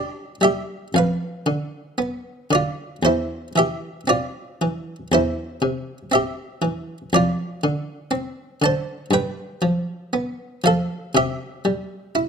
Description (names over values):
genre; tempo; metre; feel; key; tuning
classical, baroque-style suite movement for harpsichord; 59 BPM; 4/4; rubato; C major; A4 = 440 Hz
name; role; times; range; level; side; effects
buff-stop harpsichord; solo; 0.0-12.3 s; E2 to A5; -20 LUFS; equal; none
room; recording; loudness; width
moderate recital hall reverb, RT60 1.4 s; close, detailed microphones; -20 LUFS; side -6 dB against mid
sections
0.0-12.3 A section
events
none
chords
0.0 G5; 0.9 Bdim/F; 3.0 C/E; 7.1 Dm7/F; 9.1 G7; 11.1 C